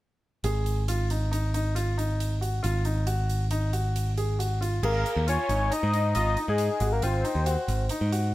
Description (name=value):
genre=progressive instrumental, band music in an uneven meter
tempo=137 BPM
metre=5/4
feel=straight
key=Ab mixolydian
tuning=A4 = 440 Hz
part: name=clear baby grand piano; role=arpeggios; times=0.4-8.3 s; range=Eb4 to Ab4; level=-32 LUFS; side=left 1 dB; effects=none
part: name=modern bright picked electric bass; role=bass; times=0.4-8.3 s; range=Ab1 to Ab2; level=-26 LUFS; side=equal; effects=none
part: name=big rock drum kit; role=drums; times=0.4-8.2 s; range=crash cymbal, hi-hat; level=-39 LUFS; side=right 4 dB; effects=none
part: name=lead with added fifth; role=melody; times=4.8-7.9 s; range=Ab4 to Eb5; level=-27 LUFS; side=left 2 dB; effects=chorus
room=studio ambience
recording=none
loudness=-24 LUFS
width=side -16 dB against mid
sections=0.4-4.8 A section; 4.8-8.3 B section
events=none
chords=0.4 Ab5